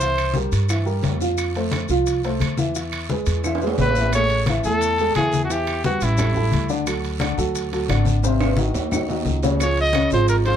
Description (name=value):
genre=Afro-Cuban jazz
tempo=175 BPM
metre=4/4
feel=straight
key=unclear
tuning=A4 = 443 Hz
part: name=clear trumpet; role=melody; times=0.0-0.4, 3.8-6.7, 9.6-10.6 s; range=E4 to D#5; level=-22 LUFS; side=equal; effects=plate reverb
part: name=warm baby grand piano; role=accompaniment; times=0.0-10.6 s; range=B#2 to F5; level=-24 LUFS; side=equal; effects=none
part: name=upright bass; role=bass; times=0.0-10.6 s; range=G#1 to G2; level=-23 LUFS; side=equal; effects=none
part: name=congas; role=percussion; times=0.0-10.6 s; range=none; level=-27 LUFS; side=left 4 dB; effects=none
part: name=guiro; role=percussion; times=0.0-10.6 s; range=none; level=-38 LUFS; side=right 8 dB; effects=none
part: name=maracas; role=percussion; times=0.0-10.6 s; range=none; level=-35 LUFS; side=left 8 dB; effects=none
part: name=timbales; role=percussion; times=0.0-10.6 s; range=none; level=-30 LUFS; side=right 3 dB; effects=none
part: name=claves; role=percussion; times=0.2-10.1 s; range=none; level=-34 LUFS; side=right 4 dB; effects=none
room=moderate small room reverb, RT60 0.5 s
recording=dark, warm production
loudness=-18 LUFS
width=side -9 dB against mid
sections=0.0-4.1 A section; 4.1-10.6 B section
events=drum fill 3.4-4.1, 8.2-9.6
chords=0.0 C7; 1.4 Fmaj7; 2.8 E; 4.1 Amaj7; 5.5 Em; 6.2 A5; 6.9 D; 8.2 G#7; 9.6 C#maj9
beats=| 0.01 0.35 0.70 1.04 | 1.38 1.73 2.07 2.41 | 2.75 3.10 3.44 3.78 | 4.12 4.47 4.81 5.15 | 5.50 5.84 6.18 6.52 | 6.87 7.21 7.55 7.89 | 8.23 8.58 8.92 9.26 | 9.60 9.94 10.29